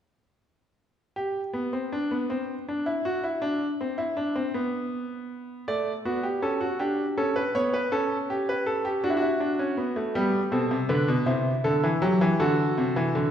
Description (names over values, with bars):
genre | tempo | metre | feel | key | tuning
classical, baroque-style 3-part fugue for grand piano | 53 BPM (dotted quarters) | 6/8 | straight | G major | A4 = 439 Hz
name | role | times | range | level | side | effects
bright baby grand piano | solo | 1.2-13.3 s | B2 to D5 | -24 LUFS | equal | none
room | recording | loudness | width
wet recital hall reverb, RT60 1.8 s | heard from further back in the room | -24 LUFS | side -9 dB against mid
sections
1.2-13.3 A section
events
none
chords
1.2 N.C.; 5.7 D/A; 6.8 G; 7.9 A7/C#; 9.0 D; 10.2 G; 11.3 C; 12.4 D7